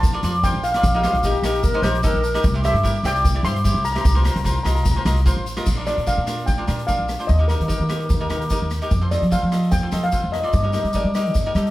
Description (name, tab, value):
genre	calypso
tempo	148 BPM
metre	4/4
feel	straight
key	Bb major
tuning	A4 = 445 Hz
part	steel pan	melody	0.0-11.7 s	Bb4 to C6	-25 LUFS	equal	none
part	upright bass	bass	0.0-11.7 s	A1 to G3	-21 LUFS	equal	none
part	street-band drum kit	drums	0.0-11.7 s	crash cymbal, hi-hat, kick drum, rim click	-24 LUFS	equal	none
part	tube shaker	percussion	0.0-11.7 s	none	-36 LUFS	left 2 dB	none
part	cavaquinho	accompaniment	0.1-11.7 s	D4 to Eb5	-26 LUFS	equal	none
part	bright baroque flute	second line	1.2-2.5 s	G4 to C5	-23 LUFS	left 2 dB	none
room	moderate studio reverb, RT60 0.7 s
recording	heard from further back in the room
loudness	-17 LUFS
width	side -17 dB against mid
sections	0.0-5.7 A section; 5.7-11.7 B section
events	none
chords	0.0 Bbadd9; 0.8 Eb/Bb; 2.4 C; 4.1 F7sus4/C; 5.7 Bb; 7.3 Eb; 8.9 F; 10.5 Eb/G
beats	0.03 0.43 | 0.83 1.23 1.64 2.04 | 2.44 2.84 3.25 3.65 | 4.05 4.45 4.86 5.26 | 5.66 6.07 6.47 6.88 | 7.28 7.69 8.10 8.50 | 8.91 9.32 9.72 10.13 | 10.54 10.95 11.35